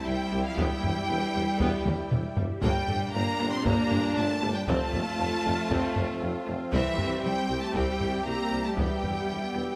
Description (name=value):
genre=cinematic, hybrid orchestral and electronic film score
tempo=117 BPM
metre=4/4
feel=straight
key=unclear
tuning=A4 = 440 Hz
part: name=clear symphonic violin section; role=melody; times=0.0-9.8 s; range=E5 to C6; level=-39 LUFS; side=equal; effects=none
part: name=warm symphonic violin section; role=second line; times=0.0-9.8 s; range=E5 to C6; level=-38 LUFS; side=equal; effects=none
part: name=rich studio viola section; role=accompaniment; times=0.0-9.8 s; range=G3 to G4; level=-37 LUFS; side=equal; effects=none
part: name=dark French horn section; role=sustained chords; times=0.0-9.8 s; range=Bb2 to E4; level=-37 LUFS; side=equal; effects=none
part: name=phased analog pad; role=sustained chords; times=0.0-9.8 s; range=Bb2 to F5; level=-39 LUFS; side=equal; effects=phaser, chorus
part: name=rich symphonic cello section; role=bass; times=0.0-9.8 s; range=E3 to C4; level=-36 LUFS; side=equal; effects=none
part: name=felt-muted upright piano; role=texture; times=0.0-9.8 s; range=G3 to C5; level=-45 LUFS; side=equal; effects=none
part: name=clear symphonic double bass section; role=bass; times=0.1-9.6 s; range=C2 to G2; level=-37 LUFS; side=equal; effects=none
part: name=clear tuba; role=bass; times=0.1-9.6 s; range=E1 to C2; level=-38 LUFS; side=equal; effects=none
part: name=taiko ensemble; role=drums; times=0.6-9.8 s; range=none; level=-34 LUFS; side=equal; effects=none
room=light reverb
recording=none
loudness=-28 LUFS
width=mono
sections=0.0-9.8 A section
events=drum fill 1.9-2.6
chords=0.0 C; 0.6 Em; 2.6 Gm; 4.7 F; 6.7 C; 8.8 Em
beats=0.06 | 0.57 1.09 1.60 2.11 | 2.63 3.14 3.65 4.17 | 4.68 5.19 5.70 6.22 | 6.73 7.24 7.75 8.27 | 8.78 9.29